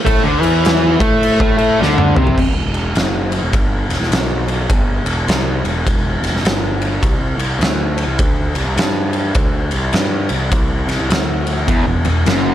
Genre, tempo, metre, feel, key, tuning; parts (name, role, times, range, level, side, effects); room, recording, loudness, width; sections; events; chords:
stoner and doom metal; 103 BPM; 4/4; swing 62% on 8ths; E minor; A4 = 440 Hz
fuzz guitar; riff; 0.1-2.4, 11.7-12.5 s; E2 to A3; -14 LUFS; left 1 dB; distortion
fuzz picked electric bass; bass; 0.1-12.5 s; E1 to A2; -19 LUFS; equal; overdrive
oversized low-tuned drum kit; drums; 0.1-12.4 s; crash cymbal, kick drum, ride cymbal, snare drum, toms; -17 LUFS; equal
small room ambience; dark, warm production; -14 LUFS; side -12 dB against mid
0.0-2.4 A section; 2.4-12.5 B section
drum fill 1.8-2.4
0.0 D5; 2.4 Em; 7.0 C5; 11.7 N.C.